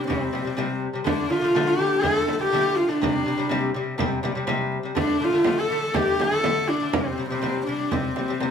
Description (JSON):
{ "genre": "mongolian traditional, Mongolian folk", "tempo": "123 BPM", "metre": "4/4", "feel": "straight", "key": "unclear", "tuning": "A4 = 439 Hz", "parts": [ { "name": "rich horsehead fiddle", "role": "melody", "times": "0.0-8.5 s", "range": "C4 to A4", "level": "-23 LUFS", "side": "equal", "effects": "none" }, { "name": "lute", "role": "arpeggios", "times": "0.0-8.5 s", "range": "C3 to A3", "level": "-26 LUFS", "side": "left 3 dB", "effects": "slapback echo" }, { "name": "frame drum", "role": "percussion", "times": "0.1-8.5 s", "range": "none", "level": "-28 LUFS", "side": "right 5 dB", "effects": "none" } ], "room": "light reverb", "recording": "studio ambience", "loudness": "-21 LUFS", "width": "side -7 dB against mid", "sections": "0.0-8.5 A section", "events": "none", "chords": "0.0 C5; 1.1 D5; 3.0 C5; 5.0 D5; 6.9 C5", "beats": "0.09 0.58 | 1.06 1.55 2.04 2.53 | 3.02 3.50 3.99 4.48 | 4.97 5.46 5.95 6.44 | 6.93 7.42 7.91 8.40" }